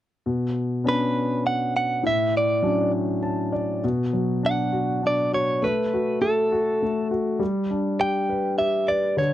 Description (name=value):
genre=acoustic folk-pop ballad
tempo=101 BPM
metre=3/4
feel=straight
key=unclear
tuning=A4 = 440 Hz
part: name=clear concert grand piano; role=accompaniment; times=0.3-9.3 s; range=A2 to A5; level=-23 LUFS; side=left 2 dB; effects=none
part: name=direct-recorded clean electric guitar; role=melody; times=0.9-9.3 s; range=A4 to G5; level=-23 LUFS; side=right 2 dB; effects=harmonic tremolo
room=moderate booth ambience, RT60 0.2 s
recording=dry, close 1970s-style studio recording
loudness=-21 LUFS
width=side -13 dB against mid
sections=0.3-3.8 A section; 3.8-9.3 B section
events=none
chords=0.3 Bmadd9; 2.0 Dmaj7/A; 3.8 Bm; 5.6 F#madd11/A; 7.4 G